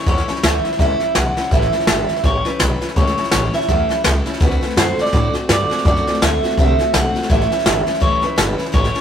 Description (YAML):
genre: rockabilly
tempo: 166 BPM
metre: 4/4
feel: swing 58% on 8ths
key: A mixolydian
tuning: A4 = 441 Hz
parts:
  - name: electric guitar through a small old amp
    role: melody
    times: 0.0-9.0 s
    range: B4 to F#5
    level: -20 LUFS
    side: right 1 dB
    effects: spring reverb
  - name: picked steel-string acoustic guitar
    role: accompaniment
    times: 0.0-9.0 s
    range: A2 to F#4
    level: -24 LUFS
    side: left 2 dB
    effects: none
  - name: upright bass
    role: bass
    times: 0.1-9.0 s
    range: E1 to A2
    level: -21 LUFS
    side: equal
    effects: none
  - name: jazz brush drum kit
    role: drums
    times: 0.1-9.0 s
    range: hi-hat, kick drum, snare drum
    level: -18 LUFS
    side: equal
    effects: none
room: moderate stone room reverb, RT60 1.2 s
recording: rough rehearsal-room recording, tube saturation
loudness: -14 LUFS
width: side -8 dB against mid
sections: 0.0-9.0 A section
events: none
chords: 0.0 A7; 4.4 D7; 7.3 A7